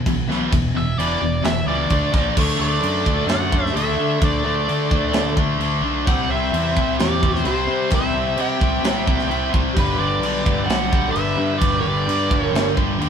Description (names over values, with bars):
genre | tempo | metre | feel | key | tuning
hard rock | 130 BPM | 4/4 | straight | unclear | A4 = 439 Hz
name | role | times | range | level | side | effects
cranked stack guitar | riff | 0.0-13.1 s | E2 to D4 | -24 LUFS | left 6 dB | overdrive
high-gain distorted guitar | riff | 0.0-13.1 s | E2 to D4 | -26 LUFS | right 7 dB | distortion
modern bright picked electric bass | bass | 0.1-13.1 s | E1 to D3 | -25 LUFS | equal | none
tight metal drum kit | drums | 0.1-13.1 s | crash cymbal, kick drum, snare drum | -22 LUFS | equal | none
nasal lead guitar with a parked wah | melody | 0.8-12.7 s | B4 to G5 | -24 LUFS | equal | overdrive
smooth overdriven lead guitar | second line | 2.4-12.7 s | G4 to E5 | -28 LUFS | right 2 dB | none
room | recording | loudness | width
moderate studio reverb, RT60 0.6 s | band playing live in one room | -17 LUFS | side -7 dB against mid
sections
0.0-2.4 A section; 2.4-13.1 B section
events
lead electric guitar solo 0.0-2.4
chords
0.0 E5; 1.9 D5; 2.1 A#5; 2.4 D; 6.1 C; 9.8 G